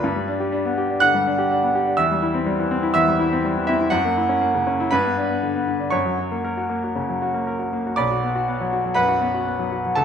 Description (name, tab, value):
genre	classical, virtuoso piano study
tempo	121 BPM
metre	4/4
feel	uneven beats, rubato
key	B minor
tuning	A4 = 435 Hz
part	clear concert grand piano	solo	0.0-10.0 s	B1 to F#6	-19 LUFS	equal	none
room	wet large studio reverb, RT60 1.3 s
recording	none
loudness	-19 LUFS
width	side -8 dB against mid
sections	0.0-8.0 A section; 8.0-10.0 B section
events	none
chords	0.0 G; 2.0 C/E; 3.9 F#7; 4.9 G; 5.9 F#; 8.0 Bm